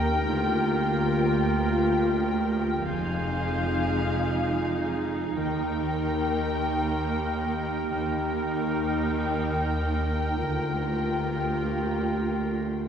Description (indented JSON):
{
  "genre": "cinematic, emotional film score for orchestra",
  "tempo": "48 BPM (dotted quarters)",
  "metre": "6/8",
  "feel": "rubato",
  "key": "Eb major",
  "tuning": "A4 = 439 Hz",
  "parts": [
    { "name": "muted studio violin section", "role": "melody", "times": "0.0-12.9 s", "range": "F5 to G5", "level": "-34 LUFS", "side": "left 3 dB", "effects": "none" },
    { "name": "clear oboe", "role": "second line", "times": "0.0-12.7 s", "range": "Bb4 to C5", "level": "-37 LUFS", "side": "right 2 dB", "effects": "none" },
    { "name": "muted studio violin section", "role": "second line", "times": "0.0-12.9 s", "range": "Ab4 to Bb4", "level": "-37 LUFS", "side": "left 1 dB", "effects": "none" },
    { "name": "silver concert flute", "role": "second line", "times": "0.0-12.7 s", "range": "G5 to Ab5", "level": "-38 LUFS", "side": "left 2 dB", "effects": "none" },
    { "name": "warm clarinet", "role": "second line", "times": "0.0-12.9 s", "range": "Eb4 to F4", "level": "-38 LUFS", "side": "equal", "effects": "none" },
    { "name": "muted studio viola section", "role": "accompaniment", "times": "0.0-12.9 s", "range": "Eb4 to F4", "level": "-33 LUFS", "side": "equal", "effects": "none" },
    { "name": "warm French horn section", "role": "sustained chords", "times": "0.0-12.9 s", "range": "Ab3 to G4", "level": "-33 LUFS", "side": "right 1 dB", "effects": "none" },
    { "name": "concert harp", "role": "arpeggios", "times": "0.0-12.9 s", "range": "D3 to F5", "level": "-34 LUFS", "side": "left 2 dB", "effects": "none" },
    { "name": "muted studio cello section", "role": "bass", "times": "0.0-12.9 s", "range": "D2 to F2", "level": "-30 LUFS", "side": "right 2 dB", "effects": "none" },
    { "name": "muted studio double bass section", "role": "bass", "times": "0.0-12.9 s", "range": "F1 to Eb2", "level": "-33 LUFS", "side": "equal", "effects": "none" }
  ],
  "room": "wet scoring stage reverb, RT60 1.7 s",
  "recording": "heard from further back in the room",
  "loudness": "-24 LUFS",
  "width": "side -8 dB against mid",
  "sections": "0.0-12.9 A section",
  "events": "none",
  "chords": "0.3 Bb6/D; 2.9 Fm7; 5.4 Eb; 10.4 Bb6/D"
}